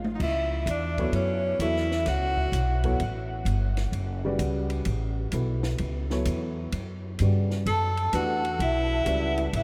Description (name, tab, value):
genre	modal jazz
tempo	129 BPM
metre	4/4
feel	swing 66% on 8ths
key	F# phrygian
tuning	A4 = 440 Hz
part	upright bass	bass	0.0-9.6 s	F#1 to G2	-30 LUFS	equal	none
part	compact cocktail drum kit	drums	0.0-9.6 s	crash cymbal, hi-hat, kick drum, ride cymbal, snare drum, toms	-40 LUFS	equal	none
part	clear tenor saxophone	second line	0.1-3.0, 7.7-9.6 s	C#4 to A4	-35 LUFS	equal	none
part	vibraphone with soft mallets	melody	0.2-3.0, 7.7-9.6 s	C#5 to A5	-32 LUFS	equal	none
part	warm upright piano	accompaniment	1.0-9.6 s	C#3 to D5	-35 LUFS	equal	none
room	moderate huge ambient reverb, RT60 7.6 s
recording	in a vast, echoing space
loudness	-27 LUFS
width	mono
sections	0.2-9.6 A section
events	drum fill 0.0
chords	0.2 F#m7; 7.7 Aadd9